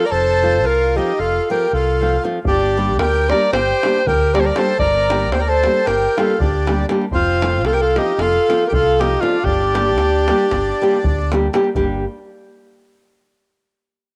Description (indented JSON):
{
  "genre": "balkan folk, Balkan wedding band",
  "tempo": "232 BPM (eighths)",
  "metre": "9/8",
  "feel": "straight",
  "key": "G minor",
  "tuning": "A4 = 440 Hz",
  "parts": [
    { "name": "clear alto saxophone", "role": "melody", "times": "0.0-11.3 s", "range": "F4 to D5", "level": "-20 LUFS", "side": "equal", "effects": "cassette tape" },
    { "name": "accordion", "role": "second line", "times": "0.0-11.3 s", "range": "C4 to Bb4", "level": "-25 LUFS", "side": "equal", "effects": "cassette tape" },
    { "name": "nylon-string guitar", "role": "accompaniment", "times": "0.0-12.0 s", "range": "F3 to G4", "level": "-24 LUFS", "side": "equal", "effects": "cassette tape" },
    { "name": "fingered electric bass", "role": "bass", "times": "0.1-12.0 s", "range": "F1 to D2", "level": "-24 LUFS", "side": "equal", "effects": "tube saturation" },
    { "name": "davul", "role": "percussion", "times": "2.5-12.0 s", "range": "none", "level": "-27 LUFS", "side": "equal", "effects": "none" }
  ],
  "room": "moderate spring reverb, RT60 1.9 s, studio reverb",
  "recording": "home recording on cassette",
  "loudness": "-17 LUFS",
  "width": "mono",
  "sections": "0.0-11.8 A section; 11.8-14.1 B section",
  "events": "none",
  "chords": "0.0 F; 2.5 Gm; 7.1 F; 9.4 Gm"
}